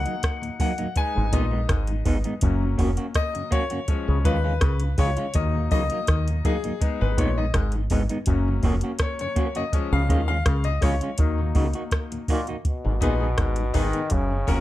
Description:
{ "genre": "roots reggae", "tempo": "82 BPM", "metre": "4/4", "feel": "straight", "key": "G# dorian", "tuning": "A4 = 440 Hz", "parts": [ { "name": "bright grand piano", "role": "stabs", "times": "0.0-14.6 s", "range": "E#3 to G#5", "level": "-29 LUFS", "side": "left 5 dB", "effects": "none" }, { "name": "deep dub fingered electric bass", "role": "bass", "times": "0.0-14.6 s", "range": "E#1 to D#2", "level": "-24 LUFS", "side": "equal", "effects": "none" }, { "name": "semi-hollow electric guitar", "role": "accompaniment", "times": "0.1-14.6 s", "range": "F#3 to G#4", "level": "-31 LUFS", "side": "right 3 dB", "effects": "tape echo" }, { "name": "soft vintage rhythm box", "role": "drums", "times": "0.1-14.6 s", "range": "hi-hat, kick drum, rim click", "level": "-24 LUFS", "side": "equal", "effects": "none" }, { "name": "mellow tonewheel organ", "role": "accompaniment", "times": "0.4-14.6 s", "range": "D#2 to D#4", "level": "-34 LUFS", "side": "left 2 dB", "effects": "slow rotary speaker" }, { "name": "auto-wah clav", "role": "riff", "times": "1.2-14.6 s", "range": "E#2 to D#3", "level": "-32 LUFS", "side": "left 4 dB", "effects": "none" }, { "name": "bright trombone", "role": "melody", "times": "12.3-14.6 s", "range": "A#2 to D#3", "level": "-29 LUFS", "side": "left 1 dB", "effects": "tape echo" } ], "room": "light reverb", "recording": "none", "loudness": "-21 LUFS", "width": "side -15 dB against mid", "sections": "0.0-12.6 A section; 12.6-14.6 B section", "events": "grand piano solo 0.0-12.6", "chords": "0.0 D#m; 1.0 G#m; 2.4 F#; 3.9 C#; 5.3 D#m; 6.8 G#m; 8.3 F#; 9.7 C#; 11.2 D#m; 12.6 G#m" }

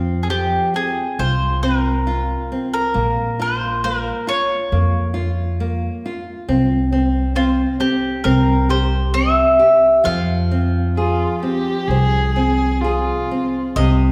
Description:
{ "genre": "fado-style ballad", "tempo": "67 BPM", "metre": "4/4", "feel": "rubato", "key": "F harmonic minor", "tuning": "A4 = 440 Hz", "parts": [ { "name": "nylon-string guitar", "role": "accompaniment", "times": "0.0-14.1 s", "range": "C3 to C5", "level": "-24 LUFS", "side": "equal", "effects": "none" }, { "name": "upright bass", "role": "bass", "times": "0.0-14.1 s", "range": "Bb1 to F2", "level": "-22 LUFS", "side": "equal", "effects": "none" }, { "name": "mandolin", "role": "melody", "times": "0.2-13.9 s", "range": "F4 to F5", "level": "-21 LUFS", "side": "equal", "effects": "none" }, { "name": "dark violin", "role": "second line", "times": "11.0-13.8 s", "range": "F4 to Ab4", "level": "-25 LUFS", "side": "equal", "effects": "none" } ], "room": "wet scoring stage reverb, RT60 1.7 s", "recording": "recorded in a church or concert hall", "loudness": "-18 LUFS", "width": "mono", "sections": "0.0-13.8 A section", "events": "none", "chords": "0.0 F5; 3.0 Bbm; 6.5 C5; 8.3 C; 10.0 Fm" }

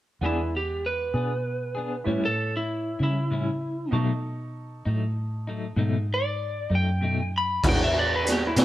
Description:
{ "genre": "slow blues", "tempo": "65 BPM (dotted quarters)", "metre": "12/8", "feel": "straight", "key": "unclear", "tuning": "A4 = 440 Hz", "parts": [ { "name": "bright upright piano", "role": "accompaniment", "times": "0.2-8.6 s", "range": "G#3 to C#6", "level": "-35 LUFS", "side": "right 5 dB", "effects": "none" }, { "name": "clean electric guitar", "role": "accompaniment", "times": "0.2-7.8 s", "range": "A2 to G#4", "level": "-30 LUFS", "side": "left 2 dB", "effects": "tremolo" }, { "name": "fingered electric bass", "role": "bass", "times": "0.2-8.6 s", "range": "E2 to C#3", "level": "-28 LUFS", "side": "equal", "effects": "none" }, { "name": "lightly driven lead guitar", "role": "melody", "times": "0.3-8.6 s", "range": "E4 to B5", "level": "-28 LUFS", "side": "equal", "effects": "none" }, { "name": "raw garage drum kit", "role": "drums", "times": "7.6-8.6 s", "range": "crash cymbal, hi-hat, kick drum, snare drum", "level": "-22 LUFS", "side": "equal", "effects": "none" } ], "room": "light reverb", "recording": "band playing live in one room", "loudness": "-24 LUFS", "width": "side -14 dB against mid", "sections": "0.2-7.6 A section; 7.6-8.6 B section", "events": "none", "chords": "0.2 E7; 2.1 A7; 3.9 B7; 7.6 E9" }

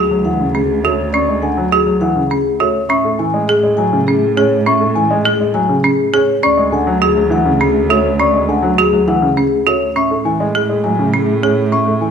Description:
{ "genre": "classical, minimalist pattern music", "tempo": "102 BPM", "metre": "3/4", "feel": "straight", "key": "D lydian", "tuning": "A4 = 438 Hz", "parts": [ { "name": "vibraphone with soft mallets", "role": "melody", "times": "0.0-12.1 s", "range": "G#4 to G#5", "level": "-17 LUFS", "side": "left 7 dB", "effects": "none" }, { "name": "folk marimba with hard mallets", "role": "arpeggios", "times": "0.0-11.9 s", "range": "C#4 to G#4", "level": "-17 LUFS", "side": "right 6 dB", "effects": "none" }, { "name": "rich cello", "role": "bass", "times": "0.0-12.1 s", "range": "D2 to A2", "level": "-20 LUFS", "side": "right 3 dB", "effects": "none" }, { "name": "warm baby grand piano", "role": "accompaniment", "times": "0.1-12.1 s", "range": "C#3 to C#4", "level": "-18 LUFS", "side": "right 1 dB", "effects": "none" }, { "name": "celesta", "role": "arpeggios", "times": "1.1-12.1 s", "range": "G#5 to C#6", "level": "-19 LUFS", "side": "left 4 dB", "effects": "none" } ], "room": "moderate large studio reverb, RT60 1.3 s", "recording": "none", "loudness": "-12 LUFS", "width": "side -7 dB against mid", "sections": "0.0-12.1 A section", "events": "none", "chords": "0.0 Dmaj9; 2.9 Amaj7; 6.4 Dmaj7; 10.0 Amaj7" }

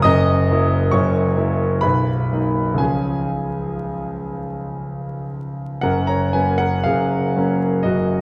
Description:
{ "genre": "classical, romantic nocturne for solo piano", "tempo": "59-71 BPM", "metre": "3/4", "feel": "rubato", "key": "F# major", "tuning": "A4 = 440 Hz", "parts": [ { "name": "warm grand piano", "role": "solo", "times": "0.0-8.2 s", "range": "B0 to D#6", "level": "-20 LUFS", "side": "equal", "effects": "none" } ], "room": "wet recital hall reverb, RT60 1.6 s", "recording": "worn, warbling old tape, cassette tape, vinyl crackle, warbly pitch drift", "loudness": "-20 LUFS", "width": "mono", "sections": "0.0-5.8 A section; 5.8-8.2 B section", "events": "none", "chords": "0.1 F#7; 1.8 Bmaj7; 2.8 C#; 5.8 F#" }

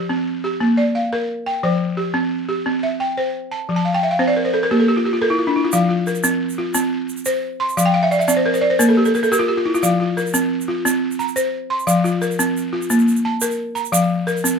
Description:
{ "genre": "west african traditional, West African string and xylophone music", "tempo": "117 BPM (dotted quarters)", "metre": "12/8", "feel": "straight", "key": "F major", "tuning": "A4 = 439 Hz", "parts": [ { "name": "balafon", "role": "arpeggios", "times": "0.0-14.6 s", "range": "F3 to C6", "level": "-16 LUFS", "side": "equal", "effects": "none" }, { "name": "egg shaker", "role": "percussion", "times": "5.7-14.5 s", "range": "none", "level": "-25 LUFS", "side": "right 5 dB", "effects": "none" } ], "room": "light reverb", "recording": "close, detailed microphones", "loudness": "-16 LUFS", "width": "side -6 dB against mid", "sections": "0.0-5.7 A section; 5.7-14.6 B section", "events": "balafon fill 3.8-5.7, 7.8-9.8", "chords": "0.0 N.C.; 0.6 Bb; 1.6 F5; 2.7 C; 3.7 F; 4.7 N.C.; 5.7 F5; 6.7 Csus4; 7.8 F5; 8.8 N.C.; 9.8 F5; 10.8 C7sus4; 11.9 F5; 12.9 Bb5; 13.9 F5" }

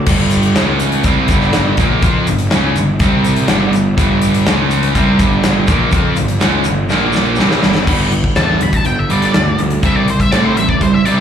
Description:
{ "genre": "classic rock", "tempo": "123 BPM", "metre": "4/4", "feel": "straight", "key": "unclear", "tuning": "A4 = 440 Hz", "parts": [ { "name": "overdriven electric guitar", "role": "riff", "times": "0.0-11.2 s", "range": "G2 to F4", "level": "-19 LUFS", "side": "left 12 dB", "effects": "slapback echo" }, { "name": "overdriven electric guitar", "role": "riff", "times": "0.1-11.2 s", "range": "G2 to F4", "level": "-17 LUFS", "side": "right 8 dB", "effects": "spring reverb, slapback echo" }, { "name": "fuzz picked electric bass", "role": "bass", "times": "0.1-11.2 s", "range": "E1 to A2", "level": "-17 LUFS", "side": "left 1 dB", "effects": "overdrive" }, { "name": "big rock drum kit", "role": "drums", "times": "0.1-11.2 s", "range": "crash cymbal, hi-hat, kick drum, snare drum", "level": "-16 LUFS", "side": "left 1 dB", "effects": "none" }, { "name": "tube shaker", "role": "percussion", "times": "0.1-7.5 s", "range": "none", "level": "-34 LUFS", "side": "left 5 dB", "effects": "none" }, { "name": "octave-fuzz lead guitar", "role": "melody", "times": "8.4-11.2 s", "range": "C5 to B5", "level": "-19 LUFS", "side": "left 2 dB", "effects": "wah, distortion, slapback echo, digital delay" } ], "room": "little or no reverb", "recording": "live gig heard through the venue's PA, club reverb", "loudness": "-11 LUFS", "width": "side -8 dB against mid", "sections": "0.1-7.9 A section; 7.9-11.2 B section", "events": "drum fill 6.9-7.9; lead electric guitar solo 7.9-11.2", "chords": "0.1 G5; 0.6 C#5; 1.1 G5; 3.0 C5; 3.5 G5; 4.5 C#5; 5.0 G5; 6.9 Bb5; 7.4 G5; 9.8 C5" }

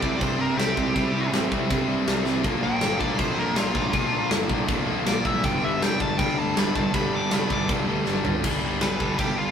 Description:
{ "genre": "punk rock", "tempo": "160 BPM", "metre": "4/4", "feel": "straight", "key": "unclear", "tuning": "A4 = 440 Hz", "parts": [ { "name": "nasal lead guitar with a parked wah", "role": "melody", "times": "0.0-9.5 s", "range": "B3 to D6", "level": "-28 LUFS", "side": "equal", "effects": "overdrive, digital delay" }, { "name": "crunchy overdriven guitar", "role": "riff", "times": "0.0-9.5 s", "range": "G2 to C4", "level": "-29 LUFS", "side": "right 5 dB", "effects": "none" }, { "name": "fuzz guitar", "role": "riff", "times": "0.0-8.4 s", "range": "G2 to E4", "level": "-29 LUFS", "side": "left 1 dB", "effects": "distortion" }, { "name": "tight distorted guitar", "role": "riff", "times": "0.0-9.5 s", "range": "G2 to C4", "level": "-30 LUFS", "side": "left 7 dB", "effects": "distortion" }, { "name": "fuzz picked electric bass", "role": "bass", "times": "0.0-9.5 s", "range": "F1 to G2", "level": "-33 LUFS", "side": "equal", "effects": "overdrive" }, { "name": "big rock drum kit", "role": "drums", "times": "0.0-9.3 s", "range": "crash cymbal, kick drum, snare drum, toms", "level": "-26 LUFS", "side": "equal", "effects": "none" } ], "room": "light reverb", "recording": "rough rehearsal-room recording", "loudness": "-21 LUFS", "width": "side -8 dB against mid", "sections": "0.0-8.4 A section; 8.4-9.5 B section", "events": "lead electric guitar solo 0.0-8.4; drum fill 2.3, 8.1-8.4", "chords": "0.0 C; 2.4 Bb; 5.4 G" }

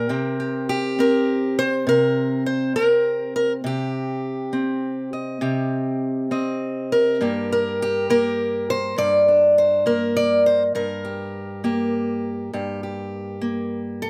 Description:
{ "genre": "acoustic country blues, solo or duo", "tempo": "68 BPM (dotted quarters)", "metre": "12/8", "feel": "straight", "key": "G minor", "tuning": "A4 = 443 Hz", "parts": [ { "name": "fingerpicked acoustic archtop guitar", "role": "solo", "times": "0.0-14.1 s", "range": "G2 to Eb5", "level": "-22 LUFS", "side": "equal", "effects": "none" } ], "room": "wet studio reverb, RT60 0.5 s", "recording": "none", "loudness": "-22 LUFS", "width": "mono", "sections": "0.0-14.1 A section", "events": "none", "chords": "0.1 Cm; 7.2 Gm" }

